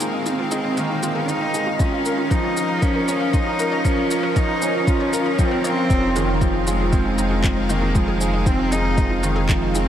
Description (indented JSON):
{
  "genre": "piano and strings electronica",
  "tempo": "117 BPM",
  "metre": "4/4",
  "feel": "straight",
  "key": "F minor",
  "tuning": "A4 = 441 Hz",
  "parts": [
    { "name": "rich cello", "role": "melody", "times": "0.0-9.9 s", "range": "Ab3 to Eb4", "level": "-23 LUFS", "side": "equal", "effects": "analog delay" },
    { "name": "clear studio string section", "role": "sustained chords", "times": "0.0-9.9 s", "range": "Db4 to F5", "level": "-30 LUFS", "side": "left 1 dB", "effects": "sidechain pumping" },
    { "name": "analog pluck", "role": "arpeggios", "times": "0.0-9.8 s", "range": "Eb4 to Bb5", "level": "-32 LUFS", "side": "right 1 dB", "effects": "none" },
    { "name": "felt-muted upright piano", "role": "riff", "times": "0.0-9.9 s", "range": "Eb3 to Bb4", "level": "-23 LUFS", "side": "right 1 dB", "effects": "analog delay" },
    { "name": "round analog bass", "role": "bass", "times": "0.0-9.9 s", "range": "F1", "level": "-24 LUFS", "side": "equal", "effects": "sidechain pumping, high-pass filter" },
    { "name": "electronic shaker and handclaps", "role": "drums", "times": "0.0-9.8 s", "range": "none", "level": "-31 LUFS", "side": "left 1 dB", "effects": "overdrive" },
    { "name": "electronic kick drum", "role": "drums", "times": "1.8-9.6 s", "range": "none", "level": "-20 LUFS", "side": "equal", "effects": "overdrive" }
  ],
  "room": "wet huge ambient reverb, RT60 7.7 s",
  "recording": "dreamy mix soaked in reverb",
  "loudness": "-18 LUFS",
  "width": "side -10 dB against mid",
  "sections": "0.0-5.9 A section; 5.9-9.9 B section",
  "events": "build-up 0.0-5.9; drop 5.9-9.9",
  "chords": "0.0 Fm7; 1.8 Bbm/F; 5.9 Fm7"
}